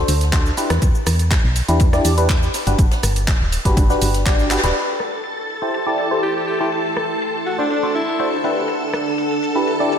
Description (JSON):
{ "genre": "piano house", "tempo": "122 BPM", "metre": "4/4", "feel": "straight", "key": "A dorian", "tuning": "A4 = 440 Hz", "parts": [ { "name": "barking FM electric piano", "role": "riff", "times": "0.0-10.0 s", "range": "D4 to D5", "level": "-21 LUFS", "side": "left 1 dB", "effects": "phaser, cassette tape, sidechain pumping, low-pass filter, ping-pong delay" }, { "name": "solid FM bass", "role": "bass", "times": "0.0-4.7 s", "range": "D1 to E2", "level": "-19 LUFS", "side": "equal", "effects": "sidechain pumping" }, { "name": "house drum kit", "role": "drums", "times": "0.1-10.0 s", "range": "cabasa, handclaps, hi-hat, rim click", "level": "-24 LUFS", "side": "right 1 dB", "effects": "low-pass filter on hats, low-pass filter on snare, low-pass filter on perc, low-pass filter on room" }, { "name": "open jazz drum kit", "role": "drums", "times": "0.1-10.0 s", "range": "ride cymbal, snare drum", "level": "-36 LUFS", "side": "left 2 dB", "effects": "none" }, { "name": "electronic kick drum", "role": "drums", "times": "0.3-4.4 s", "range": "none", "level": "-17 LUFS", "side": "equal", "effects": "none" }, { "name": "string machine, violins", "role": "sustained chords", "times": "4.8-10.0 s", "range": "A4 to A5", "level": "-24 LUFS", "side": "left 1 dB", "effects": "ensemble chorus, sidechain pumping" }, { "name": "granular cloud pad", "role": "texture", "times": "5.7-10.0 s", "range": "D4 to C6", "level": "-25 LUFS", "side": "right 1 dB", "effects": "built-in reverb, sidechain pumping" }, { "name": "bright alto saxophone", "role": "melody", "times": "6.2-8.3 s", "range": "D4 to G4", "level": "-25 LUFS", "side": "equal", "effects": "ping-pong delay" } ], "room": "moderate lush hall reverb, RT60 1.9 s, small room ambience", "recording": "dreamy mix soaked in reverb", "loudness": "-16 LUFS", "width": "side -8 dB against mid", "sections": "0.0-4.8 A section; 4.8-10.0 B section", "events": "drum fill 4.5; band accent 4.5; filter sweep on drum 4.8-10.0", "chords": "0.0 D7; 0.6 Em7; 2.5 Gmaj7; 4.8 Am7; 6.7 D7; 8.4 Em7", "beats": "0.33 | 0.82 1.31 1.80 2.29 | 2.79 3.28 3.77 4.26 | 4.75 5.25 5.74 6.23 | 6.72 7.21 7.71 8.20 | 8.69 9.18 9.67" }